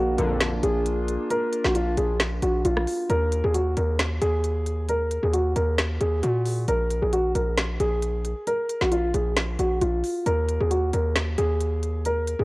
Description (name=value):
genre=hip hop, trap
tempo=134 BPM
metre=4/4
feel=half-time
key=Eb harmonic minor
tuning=A4 = 441 Hz
part: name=dark concert grand piano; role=melody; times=0.0-12.4 s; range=F4 to Bb4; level=-25 LUFS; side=equal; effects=low-pass filter, digital delay
part: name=barky tine electric piano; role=accompaniment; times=0.0-3.1 s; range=Bb3 to F5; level=-34 LUFS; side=equal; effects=medium stereo tremolo, low-pass filter
part: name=warbly tape-like pad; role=sustained chords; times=0.0-3.1 s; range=Bb3 to F4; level=-34 LUFS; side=left 2 dB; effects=chorus, built-in reverb
part: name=distorted 808-style bass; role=bass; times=0.0-12.4 s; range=Bb1 to Bb2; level=-25 LUFS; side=equal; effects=distortion
part: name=sync-sweep polysynth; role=stabs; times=0.2-0.5 s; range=Bb1 to D3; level=-30 LUFS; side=left 2 dB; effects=chorus
part: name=trap drum kit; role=drums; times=0.2-12.4 s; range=hi-hat, rim click, snare drum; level=-28 LUFS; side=equal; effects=none
room=light reverb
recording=worn, warbling old tape, cassette tape, warbly pitch drift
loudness=-22 LUFS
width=side -21 dB against mid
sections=0.0-3.1 A section; 3.1-12.4 B section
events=none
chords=0.0 Bb; 3.1 Ebm; 6.7 Bb5; 10.3 Eb5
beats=0.41 0.86 | 1.31 1.75 2.20 2.65 | 3.10 3.54 3.99 4.44 | 4.89 5.34 5.78 6.23 | 6.68 7.13 7.57 8.02 | 8.47 8.92 9.37 9.81 | 10.26 10.71 11.16 11.60 | 12.05